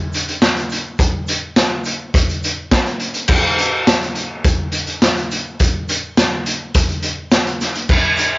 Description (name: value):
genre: rock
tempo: 104 BPM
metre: 4/4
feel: straight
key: none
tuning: none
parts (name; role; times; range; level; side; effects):
- raw garage drum kit; drums; 0.1-8.3 s; crash cymbal, hi-hat, kick drum, snare drum; -14 LUFS; equal; cassette tape
- egg shaker; percussion; 0.1-8.4 s; none; -41 LUFS; right 7 dB; none
room: small room reverb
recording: home recording on cassette, nothing above 7.5 kHz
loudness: -15 LUFS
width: side -24 dB against mid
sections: 0.0-8.4 A section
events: none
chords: none